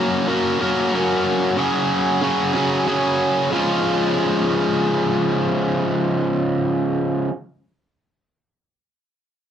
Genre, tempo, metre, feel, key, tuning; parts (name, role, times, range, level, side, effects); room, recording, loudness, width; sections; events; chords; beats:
rock; 61 BPM (dotted quarters); 6/8; straight; Db major; A4 = 440 Hz
distorted electric guitar; solo; 0.0-7.3 s; Db3 to Bb4; -17 LUFS; equal; distortion
moderate small room reverb, RT60 0.5 s; rough home demo mix; -17 LUFS; side -9 dB against mid
0.0-3.5 A section; 3.5-7.4 B section
0.0 Gb; 1.6 Dbsus4; 3.5 Db
0.59 | 1.57 2.55 | 3.53 4.51 | 5.49 6.47